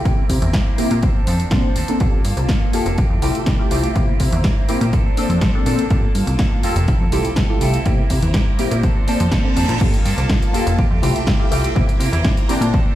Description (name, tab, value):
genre	filtered disco house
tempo	123 BPM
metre	4/4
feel	straight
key	unclear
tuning	A4 = 441 Hz
part	phased string machine	sustained chords	0.0-12.9 s	Bb3 to Bb5	-29 LUFS	equal	ensemble chorus, phaser, sidechain pumping, low-pass filter
part	semi-hollow electric guitar	riff	0.0-12.9 s	E3 to A4	-29 LUFS	right 4 dB	sidechain pumping, low-pass filter
part	funky polysynth comp	accompaniment	0.1-12.6 s	A3 to C5	-23 LUFS	left 1 dB	chorus, phaser, cassette tape, sidechain pumping, low-pass filter
part	plucky analog bass	bass	0.1-12.8 s	F1 to C3	-20 LUFS	equal	sidechain pumping, low-pass filter
part	electronic kick drum	drums	0.1-12.8 s	none	-18 LUFS	equal	none
part	house drum kit	drums	0.1-12.7 s	crash cymbal, hi-hat, snare drum	-26 LUFS	equal	sidechain pumping on hats, sidechain pumping on cymbals
part	reverse cymbal	sound effects	9.3-9.8 s	none	-31 LUFS	right 4 dB	none
part	mellow horn section	melody	12.1-12.8 s	D3 to E4	-26 LUFS	equal	vintage 12-bit sampler grit, sidechain pumping, low-pass filter
room	light reverb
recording	played on a big sound system in a bare room, stone room reverb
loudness	-15 LUFS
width	side -14 dB against mid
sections	0.0-9.8 A section; 9.8-12.9 B section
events	filter sweep 0.0-9.8; reverse cymbal 9.3-9.8; drop 9.8-12.9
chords	0.1 C7; 1.0 Bbmaj9; 2.0 Gm9; 3.0 Fmaj9; 4.0 C7; 4.9 Bbmaj9; 6.9 Fmaj9; 7.9 C7; 8.8 Bbmaj9; 9.8 Gm9; 10.8 Fmaj9; 11.8 C7